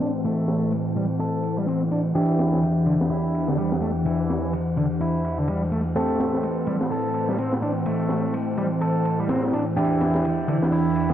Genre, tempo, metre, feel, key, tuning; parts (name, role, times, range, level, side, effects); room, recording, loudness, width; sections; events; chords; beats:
breakbeat, breaks; 126 BPM; 4/4; swing 57% on 16ths; E minor; A4 = 441 Hz
lush unison pad; sustained chords; 0.0-11.1 s; E2 to G5; -24 LUFS; equal; chorus
sludgy distorted guitar; riff; 0.0-11.1 s; D3 to A4; -27 LUFS; equal; overdrive, vintage 12-bit sampler grit, low-pass filter, digital delay
bright grand piano; stabs; 0.0-11.1 s; C4 to A4; -30 LUFS; right 1 dB; low-pass filter, digital delay
crunchy breakbeat drum kit; drums; 0.0-11.1 s; hi-hat, ride cymbal, snare drum; -31 LUFS; equal; high-pass filter on cymbals, high-pass filter on hats, high-pass filter on snare, high-pass filter on room
moderate plate reverb, RT60 1.1 s, small room ambience; low-pass filter; -21 LUFS; side -10 dB against mid
0.0-11.1 A section
filter sweep on grand piano 0.0-11.1; filter sweep on analog synth pad 0.0-11.1; filter sweep 0.0-11.1
0.0 Am7; 2.1 Em7; 6.0 Am7; 9.8 Em7
| 0.25 0.72 1.20 1.67 | 2.15 2.63 3.10 3.58 | 4.05 4.53 5.01 5.48 | 5.96 6.44 6.91 7.39 | 7.87 8.34 8.82 9.29 | 9.77 10.25 10.72